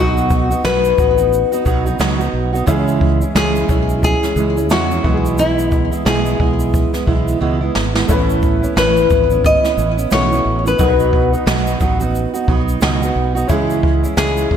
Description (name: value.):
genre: acoustic pop.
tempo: 89 BPM.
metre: 4/4.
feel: swing 60% on 16ths.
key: E major.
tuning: A4 = 442 Hz.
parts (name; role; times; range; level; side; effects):
nylon-string guitar; melody; 0.0-14.6 s; E4 to D#5; -17 LUFS; left 5 dB; slapback echo, ping-pong delay.
fingerpicked steel-string acoustic guitar; accompaniment; 0.0-14.6 s; A2 to F#4; -19 LUFS; right 5 dB; slapback echo.
warm baby grand piano; accompaniment; 0.0-14.6 s; A3 to B4; -26 LUFS; left 3 dB; slapback echo.
mellow fretless electric bass; bass; 0.0-14.6 s; G#1 to E2; -20 LUFS; equal; none.
jazz brush drum kit; drums; 0.2-14.6 s; kick drum, shaker, snare drum; -19 LUFS; equal; none.
room: moderate scoring stage reverb, RT60 1.9 s, small room ambience.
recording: big arena sound.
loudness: -13 LUFS.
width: side -8 dB against mid.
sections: 0.0-14.6 A section.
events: drum fill 7.4-8.1.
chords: 0.0 B; 2.7 C#m; 5.0 E/B; 8.1 Aadd9; 10.8 B; 13.5 E.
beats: 0.65 1.32 2.00 | 2.68 3.35 4.03 4.71 | 5.38 6.06 6.74 7.41 | 8.09 8.77 9.44 10.12 | 10.79 11.47 12.14 12.82 | 13.49 14.17.